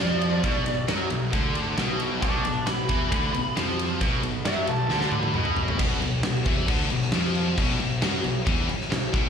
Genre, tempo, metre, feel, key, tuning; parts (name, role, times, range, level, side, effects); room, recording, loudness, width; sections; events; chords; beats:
hard rock; 135 BPM; 4/4; straight; A4 = 440 Hz
bluesy overdriven lead guitar; melody; 0.0-5.6 s; D5 to D6; -30 LUFS; right 1 dB; distortion, slapback echo, tape echo
cranked stack guitar; riff; 0.0-5.8 s; B2 to F#3; -31 LUFS; right 9 dB; overdrive, spring reverb, slapback echo
heavy high-gain guitar; riff; 0.0-9.3 s; B2 to F#3; -31 LUFS; equal; distortion, slapback echo
high-gain distorted guitar; riff; 0.0-9.3 s; B2 to F#3; -32 LUFS; left 11 dB; distortion
fuzz picked electric bass; bass; 0.0-9.3 s; B1 to F#2; -29 LUFS; equal; overdrive
huge arena drum kit; drums; 0.2-9.2 s; crash cymbal, kick drum, ride cymbal, snare drum, toms; -26 LUFS; equal
small room ambience; live gig heard through the venue's PA, club reverb; -22 LUFS; side -7 dB against mid
0.0-5.8 A section; 5.8-9.3 B section
lead electric guitar solo 0.0-5.8; drum fill 4.9-5.8
0.0 Bm
0.00 | 0.44 0.89 1.33 1.78 | 2.23 2.67 3.12 3.56 | 4.01 4.46 4.90 5.35 | 5.79 6.24 6.68 7.13 | 7.58 8.02 8.47 8.91